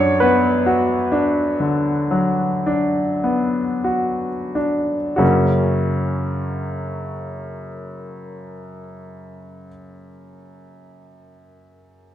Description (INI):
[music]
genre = classical, romantic nocturne for solo piano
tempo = 27-46 BPM (dotted quarters)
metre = 12/8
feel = rubato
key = F# major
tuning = A4 = 439 Hz
[part]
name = bright grand piano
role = solo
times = 0.0-12.1 s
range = F#2 to D5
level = -18 LUFS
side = equal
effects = none
[sound]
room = wet recital hall reverb, RT60 1.6 s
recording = dark, warm production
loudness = -17 LUFS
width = side -11 dB against mid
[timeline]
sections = 0.0-5.2 A section; 5.2-11.7 B section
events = slowing down 0.0-5.2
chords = 0.0 Bm/F#; 5.2 F#